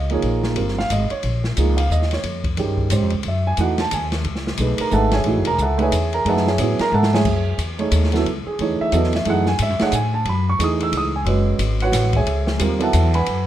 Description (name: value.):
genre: modal jazz.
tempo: 180 BPM.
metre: 3/4.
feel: swing 62% on 8ths.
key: F# dorian from 7.3 s.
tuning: A4 = 440 Hz.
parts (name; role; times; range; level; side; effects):
warm upright piano; accompaniment; 0.0-13.5 s; Eb3 to E6; -20 LUFS; right 3 dB; none.
upright bass; bass; 0.0-13.5 s; Fb1 to A2; -20 LUFS; left 1 dB; none.
open jazz drum kit; drums; 0.1-13.4 s; crash cymbal, hi-hat, kick drum, ride cymbal, snare drum; -26 LUFS; left 1 dB; none.
room: light reverb.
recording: none.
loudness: -17 LUFS.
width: side -12 dB against mid.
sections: 0.0-7.3 A section; 7.3-13.5 A section.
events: drum fill 6.9-7.3.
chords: 0.0 Bbm11; 3.2 Gbm11; 7.3 F#m11.